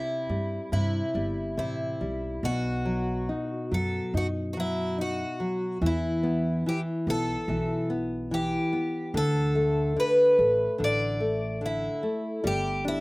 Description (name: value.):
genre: fado-style ballad.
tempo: 72 BPM.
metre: 4/4.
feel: rubato.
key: unclear.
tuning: A4 = 440 Hz.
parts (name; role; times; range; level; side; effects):
picked twelve-string acoustic guitar; melody; 0.0-13.0 s; E4 to D5; -28 LUFS; equal; none.
nylon-string guitar; accompaniment; 0.0-13.0 s; B2 to D#4; -29 LUFS; left 1 dB; none.
upright bass; bass; 0.3-13.0 s; G1 to G2; -30 LUFS; right 1 dB; none.
room: little or no reverb.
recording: recorded outdoors, with no room sound.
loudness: -25 LUFS.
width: side -23 dB against mid.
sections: 0.0-13.0 A section.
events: none.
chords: 0.0 C; 2.4 B; 5.8 Em; 9.1 Dsus2; 12.4 G5.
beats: 0.72 1.58 | 2.44 3.29 4.14 4.98 | 5.82 6.66 7.50 8.32 | 9.15 9.98 10.80 11.62 | 12.44.